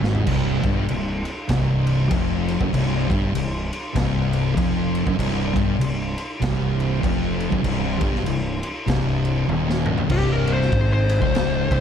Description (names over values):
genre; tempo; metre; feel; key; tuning
stoner and doom metal; 98 BPM; 4/4; swing 60% on 8ths; C minor; A4 = 440 Hz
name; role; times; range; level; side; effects
thick fuzz guitar; riff; 0.0-11.8 s; C2 to Ab2; -25 LUFS; left 8 dB; distortion
thick fuzz guitar; riff; 0.0-11.8 s; C2 to Ab2; -25 LUFS; right 6 dB; distortion
fuzz fingered electric bass; bass; 0.0-11.8 s; C1 to Ab1; -27 LUFS; equal; overdrive
raw garage drum kit; drums; 0.0-11.8 s; crash cymbal, kick drum, ride cymbal, snare drum, toms; -25 LUFS; equal; none
thick fuzz guitar; riff; 0.3-11.8 s; C2 to Ab2; -28 LUFS; left 1 dB; none
fuzz lead guitar; melody; 10.1-11.8 s; G4 to C5; -24 LUFS; left 4 dB; distortion, slapback echo
room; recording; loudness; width
light reverb; dark, warm production; -19 LUFS; side -8 dB against mid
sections
0.3-10.1 A section; 10.1-11.8 B section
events
drum fill 0.0, 9.5-10.1; lead electric guitar solo 10.1-11.8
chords
0.3 Cm; 10.1 N.C.